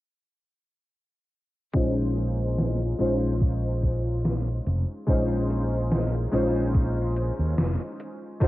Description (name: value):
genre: vaporwave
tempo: 72 BPM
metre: 4/4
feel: swing 54% on 16ths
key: Bb minor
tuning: A4 = 440 Hz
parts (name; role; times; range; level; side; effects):
- bright electric grand piano; accompaniment; 1.7-8.5 s; Ab3 to C5; -28 LUFS; left 1 dB; ensemble chorus, vintage 12-bit sampler grit, analog delay
- fretless electric bass; bass; 1.7-8.5 s; F1 to Eb2; -26 LUFS; equal; analog chorus
- electronic kick drum; drums; 1.7-8.5 s; none; -22 LUFS; equal; vintage 12-bit sampler grit, studio reverb
- gated 80s digital drum machine; drums; 1.7-8.5 s; hi-hat, snare drum; -28 LUFS; equal; gated reverb, gated reverb snare, vintage 12-bit sampler grit, studio reverb
room: light reverb, digital ambience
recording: cassette tape, low-pass filter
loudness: -23 LUFS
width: side -17 dB against mid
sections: 1.7-8.5 A section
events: filter sweep 1.7-8.5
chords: 1.7 Bbm11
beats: | 1.75 2.58 3.42 4.25 | 5.08 5.92 6.75 7.58 | 8.41